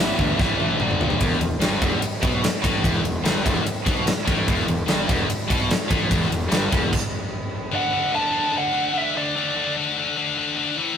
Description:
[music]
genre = hard rock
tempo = 147 BPM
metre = 4/4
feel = straight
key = unclear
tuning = A4 = 441 Hz
[part]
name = bluesy overdriven lead guitar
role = melody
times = 0.0-0.8, 7.8-9.7 s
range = D5 to A5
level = -25 LUFS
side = right 2 dB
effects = distortion
[part]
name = cranked stack guitar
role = riff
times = 0.0-6.9 s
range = E2 to A3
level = -30 LUFS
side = right 4 dB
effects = overdrive
[part]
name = raw garage guitar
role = riff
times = 0.0-6.9 s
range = E2 to A3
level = -29 LUFS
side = right 1 dB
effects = overdrive
[part]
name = scooped high-gain guitar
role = riff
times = 0.0-11.0 s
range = E2 to D4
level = -24 LUFS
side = left 4 dB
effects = distortion
[part]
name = fuzz fingered electric bass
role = bass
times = 0.0-6.9 s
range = E1 to D2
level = -28 LUFS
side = equal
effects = overdrive
[part]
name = huge arena drum kit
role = drums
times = 0.2-7.0 s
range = crash cymbal, kick drum, ride cymbal, snare drum, toms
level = -23 LUFS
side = equal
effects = none
[sound]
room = moderate studio reverb, RT60 0.6 s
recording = rough rehearsal-room recording, warm saturation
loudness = -19 LUFS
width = side -8 dB against mid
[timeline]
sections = 0.0-1.2 A section; 1.2-7.7 B section; 7.7-11.0 A section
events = drum fill 0.4-1.2; stop 6.9-7.7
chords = 0.4 A5; 0.8 G5; 1.2 E5; 7.7 D

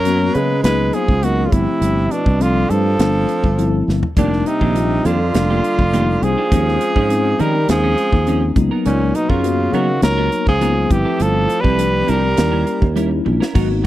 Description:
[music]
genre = electric jazz fusion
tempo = 102 BPM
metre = 4/4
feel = straight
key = unclear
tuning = A4 = 440 Hz
[part]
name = breathy trumpet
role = melody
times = 0.0-13.9 s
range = Db4 to B4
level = -20 LUFS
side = equal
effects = none
[part]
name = bright tenor saxophone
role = second line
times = 0.0-13.0 s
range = Bb2 to Ab3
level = -24 LUFS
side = right 5 dB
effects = none
[part]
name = sustaining fretless electric bass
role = bass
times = 0.0-13.9 s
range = F1 to Eb3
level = -18 LUFS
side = equal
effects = lush chorus
[part]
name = mellow tine electric piano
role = accompaniment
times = 0.1-13.9 s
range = F3 to Gb4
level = -22 LUFS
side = left 4 dB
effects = medium stereo tremolo, wide subtle chorus
[part]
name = modern studio drum kit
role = drums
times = 0.1-13.7 s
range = crash cymbal, hi-hat, kick drum, snare drum, toms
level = -19 LUFS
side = equal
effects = none
[part]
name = clean electric guitar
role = stabs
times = 4.2-13.9 s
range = Eb3 to Bb4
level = -26 LUFS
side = right 6 dB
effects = analog chorus, tape echo
[sound]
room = little or no reverb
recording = dry, close 1970s-style studio recording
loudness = -14 LUFS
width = side -14 dB against mid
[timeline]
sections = 0.0-13.6 A section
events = drum fill 3.9, 13.3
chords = 0.0 Db13sus4; 1.5 G13sus4; 4.2 F13sus4; 6.5 Eb13sus4; 8.6 Db13sus4; 10.9 G13sus4; 12.4 Eb7b9

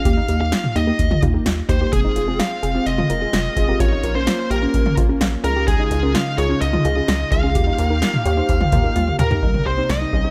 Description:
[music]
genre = synth-pop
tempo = 128 BPM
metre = 4/4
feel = straight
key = unclear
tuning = A4 = 441 Hz
[part]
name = high-gain lead guitar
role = melody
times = 0.0-10.3 s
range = Ab4 to F5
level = -26 LUFS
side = equal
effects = distortion
[part]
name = warbly dusty pluck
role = accompaniment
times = 0.0-10.3 s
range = Bb3 to Eb5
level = -28 LUFS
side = equal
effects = chorus
[part]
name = soft round pluck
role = arpeggios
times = 0.0-10.3 s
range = C4 to Ab4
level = -31 LUFS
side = equal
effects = chorus
[part]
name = rubbery square bass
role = bass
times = 0.1-10.3 s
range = F1 to Eb2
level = -24 LUFS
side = equal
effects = none
[part]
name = electro analog drum machine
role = drums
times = 0.1-10.2 s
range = hi-hat, kick drum, snare drum, toms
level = -23 LUFS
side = equal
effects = none
[part]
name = brassy analog pad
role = sustained chords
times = 1.9-10.3 s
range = C3 to G4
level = -29 LUFS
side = equal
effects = chorus
[sound]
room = light reverb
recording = none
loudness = -19 LUFS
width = mono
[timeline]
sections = 0.0-9.4 A section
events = drum fill 9.0-9.4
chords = 0.1 Ebadd9; 1.9 Fm; 3.8 Bbm; 5.4 Dbadd9; 7.6 Ebadd9; 9.4 Cm7

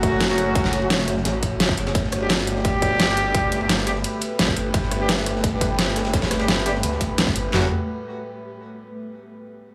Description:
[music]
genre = dark technical drum and bass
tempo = 172 BPM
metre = 4/4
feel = straight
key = F# phrygian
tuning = A4 = 441 Hz
[part]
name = deep dark ambient pad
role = sustained chords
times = 0.0-7.7 s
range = A3 to C#5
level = -30 LUFS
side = equal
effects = chorus, built-in reverb, sidechain pumping
[part]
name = bright brass ensemble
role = stabs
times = 0.0-7.7 s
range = F#3 to G4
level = -28 LUFS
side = equal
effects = digital delay
[part]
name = snarling distorted saw bass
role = bass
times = 0.0-7.7 s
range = F#1 to D2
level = -29 LUFS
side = equal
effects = overdrive, sidechain pumping
[part]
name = crunchy breakbeat drum kit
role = drums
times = 0.0-7.4 s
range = ride cymbal, snare drum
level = -35 LUFS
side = equal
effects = high-pass filter on cymbals, high-pass filter on snare, high-pass filter on room
[part]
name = dubstep drum kit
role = drums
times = 0.0-7.6 s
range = handclaps, kick drum, snare drum, toms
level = -27 LUFS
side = equal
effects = overdrive
[part]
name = dubstep drum kit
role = drums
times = 0.0-7.4 s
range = hi-hat, rim click, snare drum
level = -24 LUFS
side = equal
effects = overdrive
[sound]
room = light reverb, small room ambience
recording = studio ambience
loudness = -21 LUFS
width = mono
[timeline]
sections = 0.0-7.5 A section; 7.5-8.9 B section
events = drop 0.0-7.5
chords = 0.0 F#m; 1.9 Gadd9; 7.5 F#m

